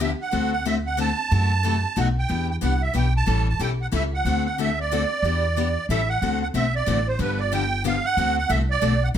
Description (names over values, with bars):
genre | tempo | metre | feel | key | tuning
acoustic string swing (jazz manouche) | 184 BPM | 3/4 | swing 59% on 8ths | D mixolydian | A4 = 440 Hz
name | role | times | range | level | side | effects
musette accordion | melody | 0.0-9.1 s | B4 to A5 | -25 LUFS | right 4 dB | none
picked steel-string acoustic guitar | accompaniment | 0.0-9.2 s | B2 to A4 | -26 LUFS | left 6 dB | none
upright bass | bass | 0.0-9.2 s | G1 to F#2 | -24 LUFS | equal | none
room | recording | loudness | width
light reverb | none | -20 LUFS | side -9 dB against mid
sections
0.0-6.2 A section; 6.2-9.2 A section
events
none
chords
0.3 D7; 1.3 F#m7b5; 2.0 B7; 2.3 Em7; 3.3 A7; 4.3 D7; 5.2 Em7; 5.9 A7; 6.2 D7; 7.2 G7; 8.2 D7